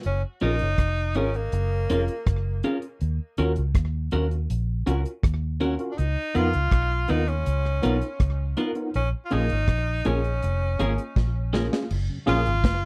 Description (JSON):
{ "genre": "lovers rock reggae", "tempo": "81 BPM", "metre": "4/4", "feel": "straight", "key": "F# major", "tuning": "A4 = 438 Hz", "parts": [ { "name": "deep reggae drum kit", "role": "drums", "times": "0.0-12.8 s", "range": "crash cymbal, hi-hat, kick drum, rim click, snare drum", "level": "-26 LUFS", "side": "equal", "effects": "none" }, { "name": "bright tenor saxophone", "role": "melody", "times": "0.1-12.9 s", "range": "A#3 to E#4", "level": "-31 LUFS", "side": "equal", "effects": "tape echo" }, { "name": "vintage muted fingered electric bass", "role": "bass", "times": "0.1-12.9 s", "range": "E#1 to E#2", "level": "-27 LUFS", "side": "equal", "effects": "none" }, { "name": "tine electric piano", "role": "accompaniment", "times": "0.4-12.4 s", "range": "A#3 to A#4", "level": "-31 LUFS", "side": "equal", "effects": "ensemble chorus, slapback echo" }, { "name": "twelve-string electric guitar", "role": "stabs", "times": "0.4-12.4 s", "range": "B3 to A#4", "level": "-30 LUFS", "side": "equal", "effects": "none" }, { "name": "mellow tonewheel organ", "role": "accompaniment", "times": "12.1-12.9 s", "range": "F#2 to E#4", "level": "-39 LUFS", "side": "equal", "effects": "none" } ], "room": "little or no reverb", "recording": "dry, close 1970s-style studio recording", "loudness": "-25 LUFS", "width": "mono", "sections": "0.0-11.9 A section", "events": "drum fill 11.2-11.9", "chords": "0.0 F#maj7; 3.0 D#m7; 6.0 C#13; 8.9 A#m7; 11.9 F#maj7", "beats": "| 0.05 0.79 1.53 2.27 | 3.01 3.75 4.49 5.23 | 5.97 6.72 7.46 8.20 | 8.94 9.68 10.42 11.16 | 11.90 12.64" }